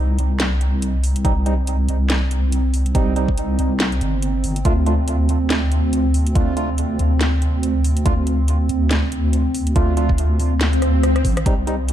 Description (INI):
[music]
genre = deep dubstep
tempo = 141 BPM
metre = 4/4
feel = swing 58% on 16ths, half-time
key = unclear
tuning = A4 = 440 Hz
[part]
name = dark analog pad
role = sustained chords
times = 0.0-11.9 s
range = C4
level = -25 LUFS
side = right 2 dB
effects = chorus
[part]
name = deep soft wobble bass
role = bass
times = 0.0-11.9 s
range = G1 to D2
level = -18 LUFS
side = equal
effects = chorus
[part]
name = garage drum kit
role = drums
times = 0.2-11.9 s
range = hi-hat, rim click, snare drum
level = -25 LUFS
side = equal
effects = studio reverb
[part]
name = percussive organ stab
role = stabs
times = 1.2-11.8 s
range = G3 to F4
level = -27 LUFS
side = right 2 dB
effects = wide subtle chorus, vintage 12-bit sampler grit, dub echo
[part]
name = electronic kick drum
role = drums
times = 1.2-11.6 s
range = none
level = -18 LUFS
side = equal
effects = studio reverb
[part]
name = swell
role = sound effects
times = 10.7-11.5 s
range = none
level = -23 LUFS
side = left 4 dB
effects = none
[sound]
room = light reverb, digital ambience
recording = dark, warm production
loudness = -16 LUFS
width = side -11 dB against mid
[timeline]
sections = 0.0-11.9 A section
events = swell 10.7-11.5; drum fill 10.8-11.5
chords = 0.0 Cm; 4.7 Dm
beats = 0.40 0.82 | 1.25 1.67 2.10 2.52 | 2.95 3.38 3.80 4.23 | 4.65 5.08 5.50 5.93 | 6.35 6.78 7.21 7.63 | 8.06 8.48 8.91 9.33 | 9.76 10.18 10.61 11.04 | 11.46 11.89